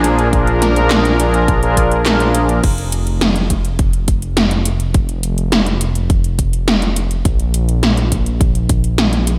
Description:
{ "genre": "synthwave", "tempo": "104 BPM", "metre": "4/4", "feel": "straight", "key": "unclear", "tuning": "A4 = 440 Hz", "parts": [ { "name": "brassy analog pad", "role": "sustained chords", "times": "0.0-2.6 s", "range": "F3 to Bb4", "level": "-20 LUFS", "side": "equal", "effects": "chorus, sidechain pumping" }, { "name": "mellow synth brass", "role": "stabs", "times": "0.0-2.6 s", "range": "D4 to Bb4", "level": "-20 LUFS", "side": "equal", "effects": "chorus, delay" }, { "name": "dark detuned saw bass", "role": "bass", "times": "0.0-9.4 s", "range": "F1 to Bb1", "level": "-20 LUFS", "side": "equal", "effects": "tube saturation" }, { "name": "80s electronic pad drums", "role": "drums", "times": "0.0-9.4 s", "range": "crash cymbal, handclaps, hi-hat, snare drum", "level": "-20 LUFS", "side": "equal", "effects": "overdrive, gated reverb" }, { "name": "electronic kick drum", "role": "drums", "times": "0.3-8.8 s", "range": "none", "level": "-19 LUFS", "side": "equal", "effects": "none" } ], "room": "little or no reverb", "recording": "none", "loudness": "-15 LUFS", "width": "mono", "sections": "0.0-2.6 A section; 2.6-9.4 B section", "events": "none", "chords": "0.0 Bb7; 2.6 N.C." }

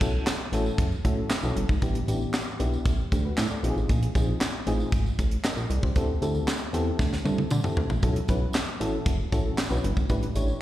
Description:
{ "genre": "early-eighties boogie funk", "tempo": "116 BPM", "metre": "4/4", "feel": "straight", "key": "unclear", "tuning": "A4 = 439 Hz", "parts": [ { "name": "FM electric piano with tremolo", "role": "accompaniment", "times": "0.0-10.6 s", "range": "B3 to D#5", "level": "-32 LUFS", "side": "left 2 dB", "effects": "plate reverb, slapback echo" }, { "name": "chorused synth bass", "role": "bass", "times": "0.0-10.5 s", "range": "F#1 to D3", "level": "-26 LUFS", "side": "right 1 dB", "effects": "none" }, { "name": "tight funk drum kit", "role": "drums", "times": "0.0-10.5 s", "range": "handclaps, hi-hat, kick drum, snare drum, toms", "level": "-27 LUFS", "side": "equal", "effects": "none" }, { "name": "tambourine", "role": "percussion", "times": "0.0-10.6 s", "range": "none", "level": "-43 LUFS", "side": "right 3 dB", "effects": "slapback echo" } ], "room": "little or no reverb", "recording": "live gig heard through the venue's PA, recital hall reverb", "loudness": "-24 LUFS", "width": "side -14 dB against mid", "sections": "0.0-10.6 A section", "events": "drum fill 7.0-8.0", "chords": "0.0 B9sus4; 1.8 A9sus4; 3.6 A#9sus4; 6.0 D9sus4; 8.0 B9sus4; 10.1 A9sus4" }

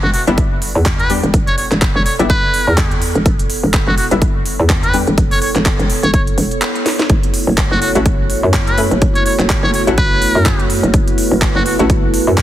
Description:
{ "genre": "bass house", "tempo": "125 BPM", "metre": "4/4", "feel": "swing 57% on 16ths", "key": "unclear", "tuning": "A4 = 439 Hz", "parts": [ { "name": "trumpet with metal mute", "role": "melody", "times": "0.0-11.7 s", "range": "F#4 to C#5", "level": "-20 LUFS", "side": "equal", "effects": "dub echo" }, { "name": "orchestra-hit-like synth stab", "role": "stabs", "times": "0.0-12.0 s", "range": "G3 to B4", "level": "-21 LUFS", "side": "left 3 dB", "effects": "built-in reverb, sidechain pumping, dub echo" }, { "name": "hollow knocking FM bass", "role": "bass", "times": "0.0-12.4 s", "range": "E1 to F#2", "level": "-18 LUFS", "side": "equal", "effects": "overdrive, sidechain pumping" }, { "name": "warbly tape-like pad", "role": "texture", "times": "0.0-12.4 s", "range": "B3 to E5", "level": "-23 LUFS", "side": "right 1 dB", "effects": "chorus, built-in reverb, sidechain pumping" }, { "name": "garage drum kit", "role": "drums", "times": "0.1-12.4 s", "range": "handclaps, hi-hat, snare drum", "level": "-21 LUFS", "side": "right 1 dB", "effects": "none" }, { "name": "electronic kick drum", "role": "drums", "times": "0.4-12.4 s", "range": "none", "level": "-15 LUFS", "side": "equal", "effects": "none" }, { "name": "dark analog pad", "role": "sustained chords", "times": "7.1-12.4 s", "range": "A3 to C#5", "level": "-21 LUFS", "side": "right 2 dB", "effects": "chorus, sidechain pumping" } ], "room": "light reverb", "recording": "heavily compressed radio sound", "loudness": "-12 LUFS", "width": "side -12 dB against mid", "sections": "0.0-12.4 A section", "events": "fade-in on ambient pad 0.0-12.4; drum fill 6.9", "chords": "0.0 Em7; 7.1 F#m7" }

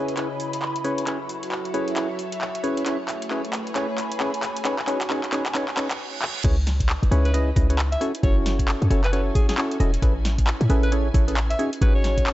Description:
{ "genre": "UK garage, two-step garage", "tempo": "134 BPM", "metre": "4/4", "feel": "swing 61% on 16ths", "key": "C# minor", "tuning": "A4 = 440 Hz", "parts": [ { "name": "soft string machine", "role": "sustained chords", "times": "0.0-12.3 s", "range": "C#3 to G#5", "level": "-36 LUFS", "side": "equal", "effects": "ensemble chorus, sidechain pumping" }, { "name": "percussive organ stab", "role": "stabs", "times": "0.0-12.3 s", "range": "C#4 to D#5", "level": "-27 LUFS", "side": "equal", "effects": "chorus, analog delay" }, { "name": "airy breathy pad", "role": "texture", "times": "0.0-6.0 s", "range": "A3 to B5", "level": "-30 LUFS", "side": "equal", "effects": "chorus, sidechain pumping" }, { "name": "garage drum kit", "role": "drums", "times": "0.1-12.3 s", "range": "crash cymbal, handclaps, hi-hat, snare drum", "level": "-29 LUFS", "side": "equal", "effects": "none" }, { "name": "reverse cymbal", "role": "sound effects", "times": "5.9-6.4 s", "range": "none", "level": "-33 LUFS", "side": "right 6 dB", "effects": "none" }, { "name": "short 808-style bass", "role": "bass", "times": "6.4-12.3 s", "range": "E1 to A2", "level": "-21 LUFS", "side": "equal", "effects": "none" }, { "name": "electronic kick drum", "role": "drums", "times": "6.4-12.2 s", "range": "none", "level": "-21 LUFS", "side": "equal", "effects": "none" }, { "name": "warm alto saxophone", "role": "melody", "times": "7.3-12.3 s", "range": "G#4 to E5", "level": "-30 LUFS", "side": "equal", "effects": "none" } ], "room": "light reverb", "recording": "dry, gritty hardware recording, nothing above 7.9 kHz", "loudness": "-20 LUFS", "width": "side -15 dB against mid", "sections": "0.0-6.4 A section; 6.4-12.3 B section", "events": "build-up 0.0-6.4; drum fill 0.0-6.0, 6.2; reverse cymbal 5.9-6.4; stop 6.0-6.4; drop 6.4-12.3", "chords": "0.0 C#m7; 0.8 F#m7; 2.9 Amaj9; 4.4 G#7sus4; 6.4 C#m7; 8.0 F#m7; 10.0 Amaj9; 11.6 G#7sus4" }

